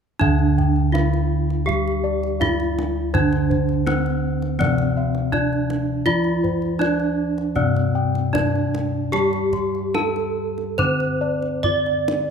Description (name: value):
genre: Javanese gamelan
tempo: 81 BPM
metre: 4/4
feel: uneven beats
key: D slendro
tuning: A4 = 439 Hz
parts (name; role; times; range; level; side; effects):
- gamelan-type bronze metallophone; melody; 0.2-12.3 s; C4-25c to D5; -23 LUFS; right 1 dB; none
- gamelan-type bronze metallophone; accompaniment; 0.2-12.3 s; C3-25c to C4-25c; -24 LUFS; right 2 dB; none
- gamelan-type bossed gongs; arpeggios; 0.2-12.1 s; C5-25c to D6; -28 LUFS; left 4 dB; none
- gamelan-type bossed gongs; bass; 0.2-12.3 s; D2 to G4; -25 LUFS; left 2 dB; none
- kendang; percussion; 0.2-12.3 s; none; -28 LUFS; right 2 dB; none
room: light reverb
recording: close, detailed microphones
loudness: -18 LUFS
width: side -6 dB against mid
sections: 0.2-12.3 A section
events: none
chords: none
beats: | 0.21 0.95 1.68 2.41 | 3.14 3.87 4.60 5.34 | 6.07 6.81 7.57 8.34 | 9.13 9.95 10.78 11.64